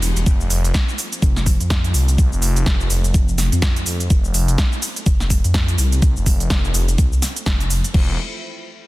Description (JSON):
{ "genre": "bass house", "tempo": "125 BPM", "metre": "4/4", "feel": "swing 59% on 16ths", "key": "unclear", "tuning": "A4 = 440 Hz", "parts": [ { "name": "dark analog pad", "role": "sustained chords", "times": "0.0-8.2 s", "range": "E4 to C5", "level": "-40 LUFS", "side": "left 1 dB", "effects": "chorus, sidechain pumping" }, { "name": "phased detuned saw bass", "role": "bass", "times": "0.0-8.2 s", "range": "E1 to F2", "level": "-19 LUFS", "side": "equal", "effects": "phaser, sidechain pumping" }, { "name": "big-room dance drum kit", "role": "drums", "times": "0.0-8.1 s", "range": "crash cymbal, hi-hat, shaker, snare drum", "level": "-24 LUFS", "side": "equal", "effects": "overdrive" }, { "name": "electronic kick drum", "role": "drums", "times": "0.3-8.1 s", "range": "none", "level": "-17 LUFS", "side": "equal", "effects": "overdrive" } ], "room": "small room ambience", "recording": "dense, heavily limited modern master", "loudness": "-15 LUFS", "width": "side -19 dB against mid", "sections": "0.0-7.9 A section", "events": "filter sweep on detuned saw bass 0.0-7.9", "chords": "0.3 F; 7.9 Em" }